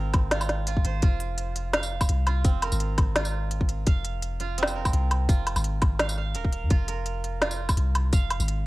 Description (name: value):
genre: half-time drum and bass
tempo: 169 BPM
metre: 4/4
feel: swing 53% on 16ths, half-time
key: F minor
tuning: A4 = 437 Hz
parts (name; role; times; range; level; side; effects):
- koto; arpeggios; 0.0-8.7 s; C4 to F5; -34 LUFS; right 8 dB; analog delay
- long sustained 808-style bass; bass; 0.0-8.7 s; Eb1 to F2; -27 LUFS; equal; none
- electronic kick drum; drums; 0.1-8.2 s; none; -22 LUFS; equal; studio reverb, cassette tape
- organic electronic drum kit; drums; 0.1-8.6 s; hi-hat, snare drum, tambourine, woodblock; -27 LUFS; equal; overdrive, studio reverb, cassette tape
room: digital ambience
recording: home recording on cassette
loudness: -23 LUFS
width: side -19 dB against mid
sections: 0.0-8.7 A section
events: none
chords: 0.0 F5